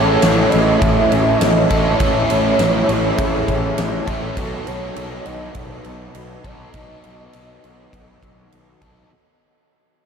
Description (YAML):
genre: rock, shoegaze and dream pop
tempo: 101 BPM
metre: 4/4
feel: straight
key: unclear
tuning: A4 = 439 Hz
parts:
  - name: warm velvety synth lead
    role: melody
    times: 0.0-8.5 s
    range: G#4 to E5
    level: -22 LUFS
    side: right 3 dB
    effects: chorus, analog delay
  - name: biting overdriven guitar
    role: riff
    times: 0.0-9.1 s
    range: A2 to A4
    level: -19 LUFS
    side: equal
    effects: ensemble chorus
  - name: fuzz picked electric bass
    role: bass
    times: 0.0-9.0 s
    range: A1 to B1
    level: -23 LUFS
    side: equal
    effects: overdrive
  - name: huge arena drum kit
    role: drums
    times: 0.2-9.0 s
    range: kick drum, ride cymbal, snare drum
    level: -21 LUFS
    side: equal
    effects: none
room: wet huge ambient reverb, RT60 8.6 s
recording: dreamy mix soaked in reverb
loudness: -14 LUFS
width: side -6 dB against mid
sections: 0.0-9.1 A section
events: fade-out 0.0-9.1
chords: 0.0 Amaj7; 4.4 B7